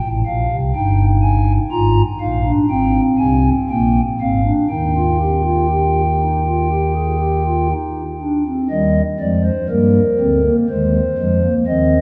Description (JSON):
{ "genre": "classical, baroque-style 3-part fugue for pipe organ", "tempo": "61 BPM", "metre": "4/4", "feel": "straight", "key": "Eb major", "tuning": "A4 = 440 Hz", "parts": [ { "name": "pipe organ, stopped flute", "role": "solo", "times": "0.0-12.0 s", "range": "G1 to Bb5", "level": "-16 LUFS", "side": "equal", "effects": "none" } ], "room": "wet cathedral reverb, RT60 5.6 s", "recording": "in a vast, echoing space", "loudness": "-17 LUFS", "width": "mono", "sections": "0.0-8.7 A section; 8.7-12.0 B section", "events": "none", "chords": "0.0 Gm11 (rootless); 0.8 Eb/G; 2.7 Ab; 3.7 Bb7; 4.7 Eb; 10.7 Fm7/Eb", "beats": "| 0.75 1.72 2.70 3.69 | 4.70 5.71 6.72 7.73 | 8.73 9.72 10.70 11.68" }